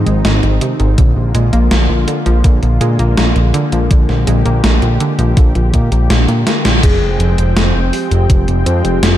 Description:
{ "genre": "synthwave", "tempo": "82 BPM", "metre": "4/4", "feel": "straight", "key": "unclear", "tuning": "A4 = 440 Hz", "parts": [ { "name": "warm analog pad", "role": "sustained chords", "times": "0.0-9.2 s", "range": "D3 to G5", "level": "-20 LUFS", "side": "left 2 dB", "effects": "wide subtle chorus, sidechain pumping" }, { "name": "fat analog bass", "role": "bass", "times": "0.0-9.2 s", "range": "F1 to Bb2", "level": "-12 LUFS", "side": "equal", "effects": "none" }, { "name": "analog pluck", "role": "arpeggios", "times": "0.1-6.8 s", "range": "C3 to Bb3", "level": "-21 LUFS", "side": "right 2 dB", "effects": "chorus, digital delay" }, { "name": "gated 80s digital drum machine", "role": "drums", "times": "0.1-9.2 s", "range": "crash cymbal, hi-hat, snare drum", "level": "-17 LUFS", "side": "equal", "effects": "gated reverb, gated reverb snare, overdrive" }, { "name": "electronic kick drum", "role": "drums", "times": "1.0-8.4 s", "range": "none", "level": "-11 LUFS", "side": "equal", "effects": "overdrive" }, { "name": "warm velvety synth lead", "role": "melody", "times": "6.8-9.2 s", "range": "F4 to Ab4", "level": "-21 LUFS", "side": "left 1 dB", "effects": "chorus, digital delay" } ], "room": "light reverb, digital ambience", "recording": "dark, warm production", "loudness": "-10 LUFS", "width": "side -12 dB against mid", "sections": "0.0-6.8 A section; 6.8-9.2 B section", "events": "drum fill 6.5-6.8; band accent 6.7-7.0", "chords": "0.0 Fm7/Ab (rootless); 1.0 Bb7; 6.8 Fmadd9" }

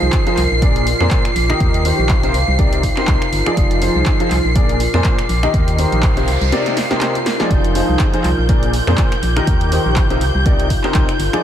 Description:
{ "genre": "piano house", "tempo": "122 BPM", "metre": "4/4", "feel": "swing 56% on 16ths", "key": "unclear", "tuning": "A4 = 440 Hz", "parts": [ { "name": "dark symphonic violin section", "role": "sustained chords", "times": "0.0-11.4 s", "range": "G6 to C7", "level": "-23 LUFS", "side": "equal", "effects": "vintage 12-bit sampler grit, sidechain pumping" }, { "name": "warm concert grand piano", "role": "riff", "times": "0.0-11.4 s", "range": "Bb2 to Eb5", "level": "-20 LUFS", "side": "left 1 dB", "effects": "ensemble chorus, sidechain pumping, tape echo" }, { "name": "organ-like FM bass", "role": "bass", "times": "0.0-11.3 s", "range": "F1 to F2", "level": "-18 LUFS", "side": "equal", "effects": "sidechain pumping" }, { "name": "warbly tape-like pad", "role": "texture", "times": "0.0-11.4 s", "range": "Eb4 to D6", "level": "-24 LUFS", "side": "equal", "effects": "chorus, built-in reverb, sidechain pumping" }, { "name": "electronic kick drum", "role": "drums", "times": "0.1-11.1 s", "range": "none", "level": "-17 LUFS", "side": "equal", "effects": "none" }, { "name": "punchy analog drum machine", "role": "drums", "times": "0.1-11.4 s", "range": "finger snaps, handclaps, hi-hat, snare drum", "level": "-25 LUFS", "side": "right 1 dB", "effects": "none" }, { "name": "noise sweep", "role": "sound effects", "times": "6.1-7.5 s", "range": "none", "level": "-31 LUFS", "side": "right 2 dB", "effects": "none" } ], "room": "moderate cathedral reverb, RT60 5.7 s", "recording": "dreamy mix soaked in reverb", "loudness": "-13 LUFS", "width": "side -10 dB against mid", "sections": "0.0-11.4 A section", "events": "noise sweep 6.1-7.5; drum fill 6.5-7.5", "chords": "0.0 Fm7; 0.6 Bb9; 1.6 Eb6; 2.3 Cm7; 3.6 Fm7; 4.6 Bb9; 5.5 Eb6; 6.3 Cm7; 7.5 Fm7; 8.5 Bb9; 9.5 Eb6; 10.2 Cm7" }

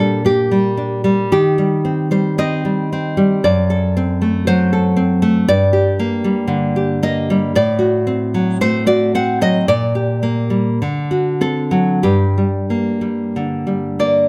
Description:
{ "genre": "romantic piece for solo classical guitar", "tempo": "45-60 BPM", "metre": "2/4", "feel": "rubato", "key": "G minor", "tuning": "A4 = 438 Hz", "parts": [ { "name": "nylon-string guitar", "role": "solo", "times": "0.0-14.3 s", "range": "F#2 to F#5", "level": "-16 LUFS", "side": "equal", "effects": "none" } ], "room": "light reverb", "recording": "close, detailed microphones", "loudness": "-16 LUFS", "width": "mono", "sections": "0.0-14.3 A section", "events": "none", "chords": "0.0 Gm/Bb; 1.3 Cm/Eb; 3.4 D7/F#; 5.5 Gm; 7.6 D7/A; 9.7 Gm/Bb; 10.8 D7; 12.0 Gm" }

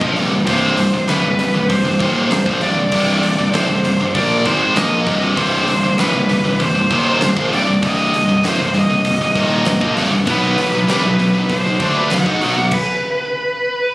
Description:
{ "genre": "heavy metal", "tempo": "98 BPM", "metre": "4/4", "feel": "straight", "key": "C harmonic minor", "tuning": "A4 = 439 Hz", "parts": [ { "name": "high-gain lead guitar", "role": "melody", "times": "0.0-13.9 s", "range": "B4 to F#5", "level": "-19 LUFS", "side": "equal", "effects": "distortion, ping-pong delay" }, { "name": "high-gain distorted guitar", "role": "riff", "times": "0.0-12.7 s", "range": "C2 to Eb4", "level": "-19 LUFS", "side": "right 2 dB", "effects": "distortion" }, { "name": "scooped high-gain guitar", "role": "riff", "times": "0.0-12.7 s", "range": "C2 to Eb4", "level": "-19 LUFS", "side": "left 2 dB", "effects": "distortion" }, { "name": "fuzz picked electric bass", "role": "bass", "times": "0.0-12.7 s", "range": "C1 to Ab2", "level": "-21 LUFS", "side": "equal", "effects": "overdrive" }, { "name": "big rock drum kit", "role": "drums", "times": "0.0-12.9 s", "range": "crash cymbal, hi-hat, kick drum, snare drum", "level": "-23 LUFS", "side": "equal", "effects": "none" } ], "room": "light reverb", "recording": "recorded on a phone in the room, studio reverb, compression", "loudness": "-13 LUFS", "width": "side -20 dB against mid", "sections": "0.0-13.9 A section", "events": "stop 12.7-13.9", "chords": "0.0 Cm; 10.3 B5" }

